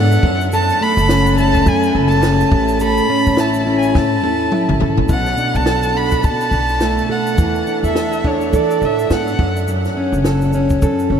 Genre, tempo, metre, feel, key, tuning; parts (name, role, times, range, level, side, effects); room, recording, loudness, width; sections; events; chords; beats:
acoustic pop; 105 BPM; 4/4; swing 60% on 16ths; A4 = 440 Hz
rich violin; melody; 0.0-9.6 s; C#5 to B5; -20 LUFS; equal; tape echo
fingerpicked plugged-in steel-string acoustic guitar; accompaniment; 0.0-11.2 s; F#2 to A4; -17 LUFS; right 1 dB
upright bass; bass; 0.0-11.2 s; F#1 to E3; -19 LUFS; equal
compact cocktail drum kit; drums; 0.1-11.1 s; kick drum, shaker, snare drum, toms; -22 LUFS; equal
moderate huge ambient reverb, RT60 7.7 s; dreamy mix soaked in reverb; -13 LUFS; side -8 dB against mid
0.0-5.1 A section; 5.1-11.2 B section
drum fill 3.9-5.1
0.2 F#m; 2.5 A; 5.1 Bm7; 7.4 E7sus4; 9.4 F#m
| 0.51 1.08 1.66 2.23 | 2.80 3.37 3.95 4.52 | 5.09 5.67 6.24 6.81 | 7.38 7.96 8.53 9.10 | 9.67 10.25 10.82